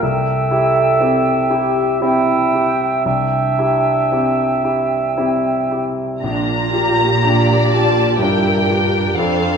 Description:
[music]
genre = cinematic, emotional film score for orchestra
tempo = 56-62 BPM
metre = 3/4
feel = rubato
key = Bb lydian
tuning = A4 = 438 Hz
[part]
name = dark clarinet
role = second line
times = 0.0-5.1 s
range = D4 to A4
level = -23 LUFS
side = equal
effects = none
[part]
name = mellow cor anglais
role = second line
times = 0.0-5.8 s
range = E5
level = -19 LUFS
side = right 6 dB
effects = none
[part]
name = silver concert flute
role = second line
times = 0.0-5.9 s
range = G5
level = -22 LUFS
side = left 1 dB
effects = none
[part]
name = bright grand piano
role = accompaniment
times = 0.0-9.6 s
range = Bb1 to G4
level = -19 LUFS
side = left 2 dB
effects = none
[part]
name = rich symphonic violin section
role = melody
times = 6.2-9.6 s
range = F5 to Bb5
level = -19 LUFS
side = left 1 dB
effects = none
[part]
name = warm symphonic viola section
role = accompaniment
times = 6.2-9.6 s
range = D4 to A4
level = -21 LUFS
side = right 3 dB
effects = none
[part]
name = rich symphonic cello section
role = bass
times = 6.2-9.6 s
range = F2 to Bb2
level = -19 LUFS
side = right 3 dB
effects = none
[part]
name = warm symphonic violin section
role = second line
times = 7.2-9.6 s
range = Bb4 to D5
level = -21 LUFS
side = left 4 dB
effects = none
[sound]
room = moderate scoring stage reverb, RT60 1.6 s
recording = minimal, uncompressed stereo recording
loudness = -14 LUFS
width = side -6 dB against mid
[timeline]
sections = 0.0-6.2 A section; 6.2-9.6 A section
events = none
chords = 0.0 Cadd9; 6.2 Bb6

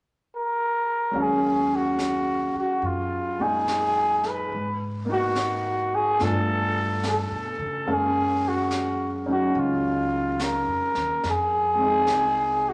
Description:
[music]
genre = jazz ballad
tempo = 71 BPM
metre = 4/4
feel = swing 67% on 8ths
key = Eb minor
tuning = A4 = 442 Hz
[part]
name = growling trumpet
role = melody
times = 0.4-12.7 s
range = F4 to Cb5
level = -26 LUFS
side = equal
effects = none
[part]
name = clear concert grand piano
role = accompaniment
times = 1.1-12.7 s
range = Bb2 to F5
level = -30 LUFS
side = equal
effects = none
[part]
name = upright bass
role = bass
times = 1.1-12.7 s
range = C2 to Db3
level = -36 LUFS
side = equal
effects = none
[part]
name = jazz brush drum kit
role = drums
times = 1.1-12.7 s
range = brushed snare drum, hi-hat, snare drum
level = -39 LUFS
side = equal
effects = none
[sound]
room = wet large studio reverb, RT60 1.3 s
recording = lossy compression artefacts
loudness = -25 LUFS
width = mono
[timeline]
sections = 0.0-1.1 A section; 1.1-12.7 B section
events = none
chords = 0.0 N.C.; 1.1 Ebm11; 4.5 Abm7; 6.2 G9; 7.9 Gbmaj7; 11.2 Fm7

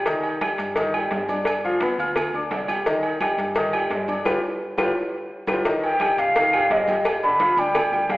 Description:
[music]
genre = latin, salsa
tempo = 172 BPM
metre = 4/4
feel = straight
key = C minor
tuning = A4 = 445 Hz
[part]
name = warm grand piano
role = accompaniment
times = 0.0-8.2 s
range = D3 to F6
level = -24 LUFS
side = left 1 dB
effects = none
[part]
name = hollow-body short-scale fingered electric bass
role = bass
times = 0.0-8.2 s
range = G1 to G2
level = -39 LUFS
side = equal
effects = none
[part]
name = congas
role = percussion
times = 0.1-8.2 s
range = none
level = -37 LUFS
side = equal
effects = none
[part]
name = cowbell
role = percussion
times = 0.1-8.2 s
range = none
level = -28 LUFS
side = left 1 dB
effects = none
[part]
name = maracas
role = percussion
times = 0.1-8.2 s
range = none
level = -47 LUFS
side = right 3 dB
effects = none
[part]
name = agogo bells and timbales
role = percussion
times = 0.2-8.2 s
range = none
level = -28 LUFS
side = right 2 dB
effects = none
[part]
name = claves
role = percussion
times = 0.4-7.9 s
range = none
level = -35 LUFS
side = left 2 dB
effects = none
[part]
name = breathy concert flute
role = melody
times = 5.8-8.2 s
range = Eb5 to B5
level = -19 LUFS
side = equal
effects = none
[sound]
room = wet recital hall reverb, RT60 1.8 s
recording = recorded in a church or concert hall, telephone sound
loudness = -20 LUFS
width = side -18 dB against mid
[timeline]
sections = 0.0-5.7 A section; 5.7-8.2 B section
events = band accent 4.3-5.7; drum fill 4.6-5.7; flute solo 5.7-8.2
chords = 0.1 Cm; 1.5 G7; 2.9 Cm; 4.3 G7; 5.7 Cm; 7.0 G7

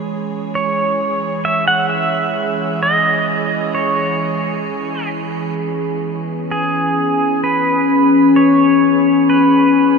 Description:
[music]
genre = ambient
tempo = 65 BPM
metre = 3/4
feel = straight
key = C# minor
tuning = A4 = 440 Hz
[part]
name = evolving wavetable pad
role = sustained chords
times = 0.0-10.0 s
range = E3 to C#5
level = -15 LUFS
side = left 2 dB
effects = chorus, built-in reverb
[part]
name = pedal steel guitar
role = melody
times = 0.6-10.0 s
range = G#4 to F#5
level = -17 LUFS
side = right 2 dB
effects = shimmer reverb, tape echo
[sound]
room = wet huge ambient reverb, RT60 9.2 s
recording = none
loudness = -13 LUFS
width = side -5 dB against mid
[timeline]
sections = 0.0-5.6 A section; 5.6-10.0 B section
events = fade-in on ambient pad 0.0-5.6; filter sweep on ambient pad 5.6-10.0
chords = 0.0 C#m7

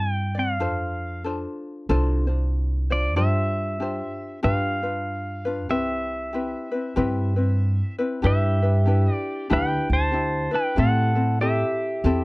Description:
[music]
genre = Hawaiian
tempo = 95 BPM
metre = 4/4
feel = swing 61% on 8ths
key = C major, G major from 8.2 s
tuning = A4 = 440 Hz
[part]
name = pedal steel guitar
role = melody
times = 0.0-12.2 s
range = G4 to A5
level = -26 LUFS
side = right 1 dB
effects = none
[part]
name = ukulele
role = accompaniment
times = 0.0-12.2 s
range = C4 to D5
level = -27 LUFS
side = left 2 dB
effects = none
[part]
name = upright bass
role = bass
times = 0.0-12.2 s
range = C2 to A2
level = -23 LUFS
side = equal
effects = none
[sound]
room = little or no reverb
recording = dry, close 1970s-style studio recording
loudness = -21 LUFS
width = side -23 dB against mid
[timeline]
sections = 0.0-8.2 A section; 8.2-12.2 B section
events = none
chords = 0.0 Cadd9; 0.6 F6; 3.2 G7sus4; 4.4 G7; 5.7 Cmaj7; 8.2 G6; 10.8 Am7

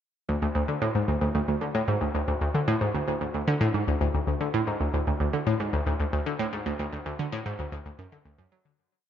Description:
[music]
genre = ambient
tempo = 113 BPM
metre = 4/4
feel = straight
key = D lydian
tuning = A4 = 440 Hz
[part]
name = analog pluck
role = solo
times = 0.3-8.7 s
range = D2 to F#3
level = -25 LUFS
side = equal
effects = chorus, ping-pong delay
[sound]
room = wet spring reverb, RT60 2.4 s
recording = echo-heavy mix, nothing above 7.5 kHz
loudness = -25 LUFS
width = side -9 dB against mid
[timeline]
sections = 0.3-8.8 A section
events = fade-out 6.0-8.8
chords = none

